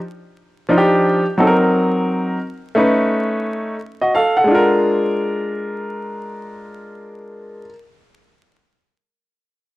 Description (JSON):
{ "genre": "hip hop", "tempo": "87 BPM", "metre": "4/4", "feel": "swing 62% on 16ths", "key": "unclear", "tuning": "A4 = 440 Hz", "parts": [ { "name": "warm grand piano", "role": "accompaniment", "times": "0.7-7.7 s", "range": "F3 to F#5", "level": "-16 LUFS", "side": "equal", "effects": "none" } ], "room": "light reverb, studio reverb", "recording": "dry, gritty hardware recording, vinyl crackle", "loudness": "-14 LUFS", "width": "side -17 dB against mid", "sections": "0.0-4.5 A section; 4.5-7.2 B section", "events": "none", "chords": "0.0 Ebmaj9; 1.7 Cm7b5; 3.1 B9; 4.5 Bb7", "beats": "0.35 1.04 | 1.73 2.42 3.11 3.80 | 4.49 5.18 5.87 6.56" }